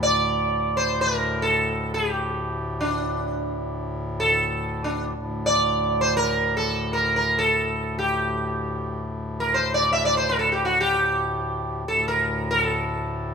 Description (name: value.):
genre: indian classical, Hindustani.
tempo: free time.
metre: none.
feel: none.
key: unclear.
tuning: A4 = 438 Hz.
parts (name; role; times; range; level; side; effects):
sitar; melody; 0.0-13.3 s; D4 to E5; -22 LUFS; right 1 dB; none.
hand-pumped harmonium; drone; 0.0-13.3 s; D2 to A2; -28 LUFS; left 1 dB; none.
room: moderate recital hall reverb, RT60 1.6 s.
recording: minimal, uncompressed stereo recording.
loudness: -21 LUFS.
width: side -6 dB against mid.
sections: 0.0-5.2 A section; 5.2-13.3 A section.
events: none.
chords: none.